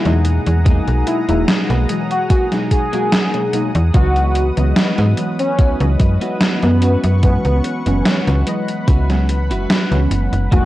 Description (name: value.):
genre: vaporwave.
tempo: 73 BPM.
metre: 4/4.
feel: straight.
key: unclear.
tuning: A4 = 440 Hz.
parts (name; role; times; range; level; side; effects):
warm velvety synth lead; melody; 0.0-10.7 s; B3 to G#4; -21 LUFS; equal; chorus, tape echo.
warbly lo-fi synth keys; accompaniment; 0.0-10.7 s; B2 to D#5; -22 LUFS; equal; wide subtle chorus, analog delay.
lush unison pad; sustained chords; 0.0-10.7 s; G#4 to D#6; -28 LUFS; left 1 dB; chorus.
clean electric guitar; riff; 0.0-10.7 s; A#3 to B4; -28 LUFS; right 2 dB; ensemble chorus, analog delay.
slap-like FM bass; bass; 0.1-10.7 s; E1 to G#2; -15 LUFS; equal; tube saturation.
gated 80s digital drum machine; drums; 0.1-10.7 s; hi-hat, snare drum; -19 LUFS; equal; gated reverb, gated reverb snare, overdrive.
electronic kick drum; drums; 0.7-10.7 s; none; -14 LUFS; equal; overdrive.
room: little or no reverb.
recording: dry, gritty hardware recording, cassette tape.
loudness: -13 LUFS.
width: side -15 dB against mid.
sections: 0.0-10.7 A section.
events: none.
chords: 0.0 Emaj9#11; 3.9 C#m11; 6.8 F#7sus4.